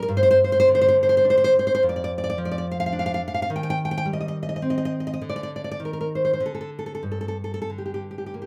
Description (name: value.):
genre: romantic piece for solo classical guitar.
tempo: 90-111 BPM.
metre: 3/4.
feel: rubato.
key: G minor.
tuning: A4 = 440 Hz.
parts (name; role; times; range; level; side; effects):
nylon-string guitar; solo; 0.0-8.5 s; F2 to G5; -23 LUFS; equal; none.
room: moderate studio ambience, RT60 0.5 s.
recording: band playing live in one room.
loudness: -23 LUFS.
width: mono.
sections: 0.0-8.5 A section.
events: none.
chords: 0.1 G5; 1.8 Dm/F; 3.5 Cm/Eb; 5.2 N.C.; 7.0 G5.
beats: | 0.10 0.67 1.25 | 1.83 2.38 2.93 | 3.49 4.07 4.65 | 5.21 5.79 6.39 | 7.03 7.70 8.35.